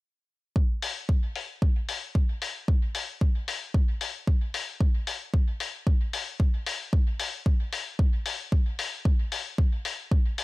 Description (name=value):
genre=techno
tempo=113 BPM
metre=4/4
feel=straight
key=none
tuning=none
part: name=electronic kick drum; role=drums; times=0.6-10.2 s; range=none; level=-23 LUFS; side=equal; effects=none
part: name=electronic hi-hat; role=drums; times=0.8-10.4 s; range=none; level=-32 LUFS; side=left 5 dB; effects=none
room=digital ambience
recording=none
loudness=-25 LUFS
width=side -21 dB against mid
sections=0.6-10.4 A section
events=none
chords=none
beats=| 0.56 1.09 1.62 2.15 | 2.68 3.21 3.74 4.28 | 4.81 5.34 5.87 6.40 | 6.93 7.46 7.99 8.52 | 9.05 9.59 10.12